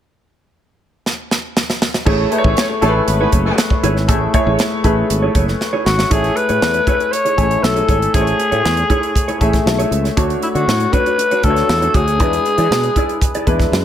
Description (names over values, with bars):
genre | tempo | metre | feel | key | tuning
polished 1980s jazz-funk pop | 118 BPM | 4/4 | straight | A major | A4 = 439 Hz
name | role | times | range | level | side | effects
tight funk drum kit | drums | 1.1-13.8 s | crash cymbal, hi-hat, kick drum, snare drum | -18 LUFS | right 1 dB | none
warm grand piano | accompaniment | 2.1-13.8 s | G#3 to G#5 | -19 LUFS | left 2 dB | wide subtle chorus
mellow electric guitar | riff | 2.1-13.8 s | D4 to E5 | -23 LUFS | right 4 dB | wide subtle chorus
sustaining fretless electric bass | bass | 2.1-13.8 s | F#1 to E3 | -19 LUFS | equal | none
mellow horn section | second line | 2.4-3.6 s | E3 to C#5 | -22 LUFS | equal | none
growling alto saxophone | melody | 5.9-13.5 s | E4 to C#5 | -17 LUFS | left 2 dB | none
room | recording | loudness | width
light reverb, small room ambience | none | -13 LUFS | side -10 dB against mid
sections
0.0-2.1 A section; 2.1-6.1 B section; 6.1-13.8 C section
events
drum fill 1.1-2.1, 5.6-6.1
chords
0.0 N.C.; 2.1 Amaj7; 10.2 Dmaj7; 12.2 E7